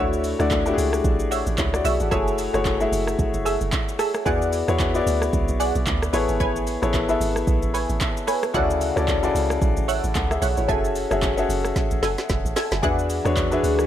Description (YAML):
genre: amapiano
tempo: 112 BPM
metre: 4/4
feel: swing 58% on 16ths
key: F# minor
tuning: A4 = 440 Hz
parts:
  - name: clear grand piano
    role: accompaniment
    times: 0.0-13.9 s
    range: C#3 to F#5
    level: -23 LUFS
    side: left 3 dB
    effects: none
  - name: punchy chord stab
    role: stabs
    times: 0.0-13.3 s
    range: F#4 to G#5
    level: -27 LUFS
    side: right 3 dB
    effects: chorus, phaser, tape echo
  - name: deep log drum bass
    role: bass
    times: 0.0-13.9 s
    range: F#1 to E2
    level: -26 LUFS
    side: right 1 dB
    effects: none
  - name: afro-pop drum kit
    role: drums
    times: 0.1-13.9 s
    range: handclaps, hi-hat, kick drum, rim click, shaker, snare drum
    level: -26 LUFS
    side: right 1 dB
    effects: none
  - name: airy breathy pad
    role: sustained chords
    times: 13.2-13.9 s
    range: E3 to G#4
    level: -26 LUFS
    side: right 1 dB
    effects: chorus
room: little or no reverb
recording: none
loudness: -20 LUFS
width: side -11 dB against mid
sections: 0.0-13.9 A section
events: drum fill 11.8-12.8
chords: 0.0 Dmaj9; 2.1 F#m9; 4.3 E9; 6.1 Amaj9; 8.5 Dmaj9; 10.7 F#m9; 12.8 E9